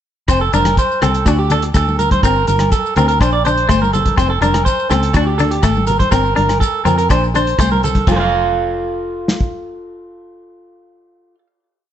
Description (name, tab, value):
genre	highlife guitar band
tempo	123 BPM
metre	4/4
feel	straight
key	F major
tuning	A4 = 441 Hz
part	clean electric guitar	accompaniment	0.3-8.2 s	F3 to D4	-20 LUFS	left 6 dB	none
part	electric guitar through a small old amp	arpeggios	0.3-11.5 s	F4 to F5	-17 LUFS	right 3 dB	tape echo
part	fingered electric bass	bass	0.3-11.3 s	F1 to F2	-18 LUFS	equal	none
part	warm soul drum kit	drums	0.3-9.5 s	crash cymbal, hi-hat, kick drum, rim click, snare drum	-18 LUFS	equal	none
part	agogo bells	percussion	0.3-8.2 s	none	-28 LUFS	left 7 dB	none
part	maracas	percussion	0.3-8.3 s	none	-32 LUFS	left 6 dB	none
part	congas	percussion	0.5-8.3 s	none	-22 LUFS	left 1 dB	none
room	light reverb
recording	nothing above 8.0 kHz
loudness	-12 LUFS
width	side -10 dB against mid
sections	0.3-8.1 groove; 8.1-11.9 final chord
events	none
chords	0.3 F; 1.3 D5; 2.2 Gm; 4.2 F; 5.1 D5; 6.1 Gm; 7.1 Bbadd9; 7.6 Am/C; 8.1 F